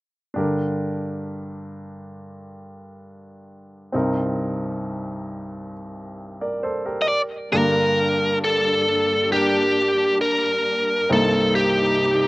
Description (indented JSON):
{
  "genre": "pop",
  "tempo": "67 BPM",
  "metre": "4/4",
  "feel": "straight",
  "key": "unclear",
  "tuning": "A4 = 440 Hz",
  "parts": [
    { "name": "clear baby grand piano", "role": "accompaniment", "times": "0.3-12.3 s", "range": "C2 to D5", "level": "-25 LUFS", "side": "equal", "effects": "none" },
    { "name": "biting lead guitar", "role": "melody", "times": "7.0-12.3 s", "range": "G4 to Eb5", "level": "-19 LUFS", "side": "equal", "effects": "overdrive" },
    { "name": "warm studio string section", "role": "sustained chords", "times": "7.5-12.3 s", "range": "G2 to Eb4", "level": "-28 LUFS", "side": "left 1 dB", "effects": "none" }
  ],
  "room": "light reverb",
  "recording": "recorded outdoors, with no room sound",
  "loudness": "-19 LUFS",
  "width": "side -21 dB against mid",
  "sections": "0.4-7.5 A section; 7.5-12.3 B section",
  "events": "none",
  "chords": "0.4 Gm; 3.9 Cm7; 7.1 N.C.; 7.5 Gm; 11.1 Cm7",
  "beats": "| 0.36 1.26 2.15 3.05 | 3.94 4.84 5.73 6.63 | 7.53 8.42 9.32 10.21 | 11.11 12.00"
}